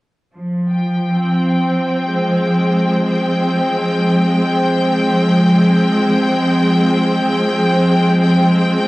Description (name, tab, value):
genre	ambient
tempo	free time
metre	none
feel	none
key	F minor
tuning	A4 = 441 Hz
part	clear symphonic string section	sustained chords	0.3-8.9 s	F3 to G5	-13 LUFS	equal	low-pass filter
room	wet studio reverb, RT60 0.6 s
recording	home recording on cassette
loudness	-13 LUFS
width	side -19 dB against mid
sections	0.4-8.9 A section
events	none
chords	0.4 Fmadd9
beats	free time